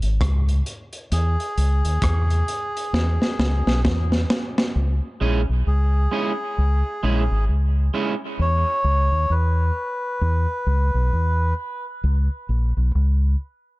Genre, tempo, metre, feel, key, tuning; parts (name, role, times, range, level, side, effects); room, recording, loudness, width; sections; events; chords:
dub reggae; 66 BPM; 4/4; swing 61% on 16ths; C# dorian; A4 = 439 Hz
deep dub fingered electric bass; bass; 0.0-13.3 s; G#1 to E2; -19 LUFS; equal
crunchy breakbeat drum kit; drums; 0.0-4.7 s; hi-hat, kick drum, rim click, snare drum; -24 LUFS; equal
melodica; melody; 1.1-11.5 s; G#4 to C#5; -26 LUFS; equal; dub echo
electric guitar at the edge of break-up; accompaniment; 5.2-8.1 s; G#3 to G#4; -27 LUFS; right 4 dB; dub echo
light reverb; dark, warm production, nothing above 10.7 kHz; -19 LUFS; side -20 dB against mid
0.0-4.7 A section; 4.7-13.8 B section
break 0.0-4.7; drum fill 2.9-4.7
0.0 C#5; 1.1 E; 4.7 C#m; 8.4 E5; 12.0 C#5